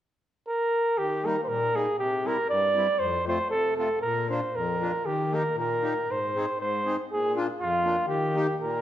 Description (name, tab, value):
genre	alpine folk, alpine dance band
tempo	118 BPM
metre	2/4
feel	swing 54% on 8ths, rubato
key	Eb major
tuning	A4 = 439 Hz
part	clear flugelhorn	melody	0.5-8.8 s	F4 to D5	-25 LUFS	right 1 dB	none
part	accordion	accompaniment	1.0-8.8 s	F2 to Ab4	-31 LUFS	left 3 dB	none
room	wet recital hall reverb, RT60 1.6 s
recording	dark, warm production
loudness	-24 LUFS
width	side -12 dB against mid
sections	1.0-8.8 A section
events	none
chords	0.0 N.C.; 1.0 Eb; 2.0 C; 3.0 F; 4.0 Bb; 5.0 Eb; 6.1 Ab; 7.1 Bb; 8.1 Eb